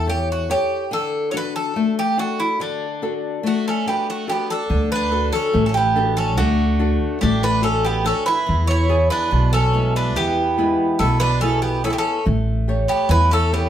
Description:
greek folk, Greek bouzouki band; 143 BPM (eighths); 9/8; straight; D major; A4 = 441 Hz
Greek bouzouki; melody; 0.0-13.7 s; D4 to C#5; -21 LUFS; right 1 dB
flamenco guitar; accompaniment; 0.0-13.7 s; B2 to C#5; -23 LUFS; left 3 dB
upright bass; bass; 0.0-13.7 s; A1 to E2; -20 LUFS; right 1 dB
Greek bouzouki; second line; 3.5-13.7 s; A3 to E4; -27 LUFS; right 4 dB
moderate studio reverb, RT60 0.6 s; heard from further back in the room; -17 LUFS; side -10 dB against mid
0.0-4.7 A section; 4.7-13.7 A section
0.0 A7; 0.9 D; 8.5 E; 12.3 A7

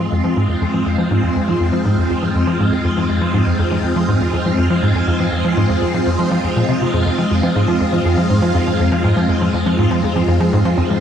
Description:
ambient, sequencer-driven space music; 121 BPM; 4/4; straight; F minor; A4 = 439 Hz
phased string machine; sustained chords; 0.0-11.0 s; Ab3 to F4; -18 LUFS; equal; ensemble chorus, phaser
wide unison pluck; arpeggios; 0.0-11.0 s; F3 to C5; -28 LUFS; left 2 dB
tight sequencer bass; riff; 0.0-11.0 s; F2 to F3; -17 LUFS; equal; wide subtle chorus, ping-pong delay
analog drone; bass; 0.8-11.0 s; F2; -26 LUFS; equal
bubbling stepped-filter texture; texture; 0.8-11.0 s; Eb4 to Eb5; -33 LUFS; right 2 dB
moderate plate reverb, RT60 2.8 s; echo-heavy mix; -14 LUFS; side -8 dB against mid
0.0-11.0 A section
0.0 Fm

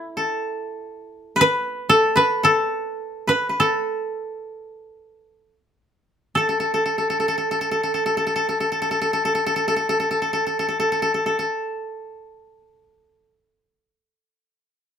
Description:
japanese traditional, Japanese chamber music; 42-65 BPM; 4/4; rubato; A4 = 440 Hz
koto; melody; 0.0-10.0 s; E4 to B4; -20 LUFS; equal
koto; second line; 0.0-13.3 s; E4 to B4; -21 LUFS; equal
moderate studio reverb, RT60 0.6 s; -19 LUFS; side -8 dB against mid
0.0-6.4 A section; 6.4-11.8 B section
slowing down 0.0-6.4

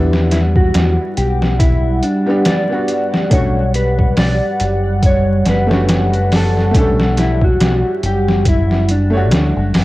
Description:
trip hop; 70 BPM; 4/4; swing 57% on 16ths; A4 = 440 Hz
clear upright piano; accompaniment; 0.0-9.8 s; G3 to C#5; -21 LUFS; equal; harmonic tremolo, cassette tape, tape echo
dark analog pad; sustained chords; 0.0-9.8 s; G3 to F#5; -21 LUFS; equal; chorus, cassette tape
deep dub fingered electric bass; bass; 0.0-9.8 s; F#1 to E2; -16 LUFS; equal
trip hop sampler-style drum kit; drums; 0.1-9.8 s; hi-hat, kick drum, snare drum; -16 LUFS; equal; overdrive, cassette tape
mellow electric guitar; melody; 0.3-9.7 s; D4 to D5; -20 LUFS; equal; analog chorus, cassette tape, tape echo
digital ambience; home recording on cassette, vinyl crackle; -12 LUFS; side -18 dB against mid
0.0-9.8 A section
0.0 Em7; 3.3 Bm7

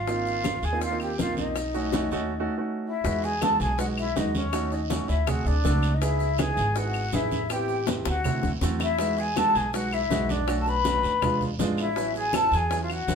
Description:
Afro-Cuban jazz; 162 BPM; 4/4; straight; E major from 3.0 s; A4 = 441 Hz
breathy mellow jazz flute; melody; 0.0-13.2 s; C#5 to B5; -28 LUFS; left 2 dB
concert flute; second line; 0.0-13.2 s; C#4 to B4; -33 LUFS; left 3 dB
upright bass; bass; 0.0-13.2 s; Ab1 to E2; -29 LUFS; equal
warm grand piano; accompaniment; 0.1-13.2 s; F#3 to A4; -30 LUFS; right 3 dB
bongos; percussion; 0.1-13.2 s; -33 LUFS; left 6 dB
congas; percussion; 0.1-13.2 s; -33 LUFS; equal
guiro; percussion; 0.1-13.2 s; -40 LUFS; right 6 dB
maracas; percussion; 0.1-13.2 s; -43 LUFS; left 3 dB
claves; percussion; 0.4-13.1 s; -39 LUFS; left 6 dB
wet studio reverb, RT60 0.8 s; band playing live in one room; -23 LUFS; side -6 dB against mid
0.0-3.0 A section; 3.0-13.2 B section
break 2.3-3.0; drum fill 7.9-9.0
0.1 Ab6; 1.6 B7; 3.0 Emaj7; 4.5 D#m7b5; 5.3 D7#11; 6.0 C#m7; 7.5 Am7; 8.2 D9; 9.0 Emaj9; 10.5 Bm7; 11.2 E7b9; 12.0 A69

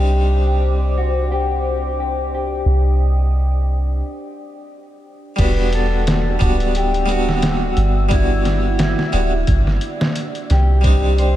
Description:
trip hop; 88 BPM; 4/4; swing 57% on 16ths; E minor; A4 = 440 Hz
mellow electric guitar; melody; 0.0-11.4 s; E4 to C5; -25 LUFS; left 2 dB; wide subtle chorus, tape echo
harpsichord; accompaniment; 0.0-11.4 s; G3 to F#4; -24 LUFS; equal; tremolo, vintage 12-bit sampler grit, tape echo
dark analog pad; sustained chords; 0.0-11.4 s; C5 to E6; -31 LUFS; left 2 dB; chorus
soft 808-style bass; bass; 0.0-11.4 s; D1 to C2; -17 LUFS; equal
bowed-like drone; texture; 0.0-4.0 s; D4; -37 LUFS; equal; built-in reverb
trip hop sampler-style drum kit; drums; 5.4-11.4 s; crash cymbal, hi-hat, kick drum, snare drum; -21 LUFS; equal
light reverb, digital ambience; -15 LUFS; side -13 dB against mid
0.0-5.4 A section; 5.4-11.4 B section
break 4.0-5.4
0.0 Cmadd9; 5.4 Em7; 10.8 Cmadd9

